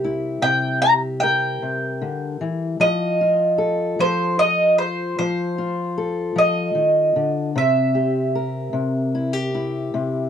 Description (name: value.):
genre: acoustic country blues, solo or duo.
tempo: 50 BPM (dotted quarters).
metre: 12/8.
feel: straight.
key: C mixolydian.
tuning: A4 = 440 Hz.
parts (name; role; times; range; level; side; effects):
mandolin; melody; 0.0-9.1 s; C5 to Bb5; -19 LUFS; right 1 dB; none.
fingerpicked old ladder-braced acoustic guitar; accompaniment; 0.0-10.3 s; C3 to Bb4; -23 LUFS; left 2 dB; none.
room: light reverb.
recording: dry, close 1970s-style studio recording.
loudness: -18 LUFS.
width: side -8 dB against mid.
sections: 0.0-10.3 A section.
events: none.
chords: 0.0 C7; 2.8 F7; 7.6 C7.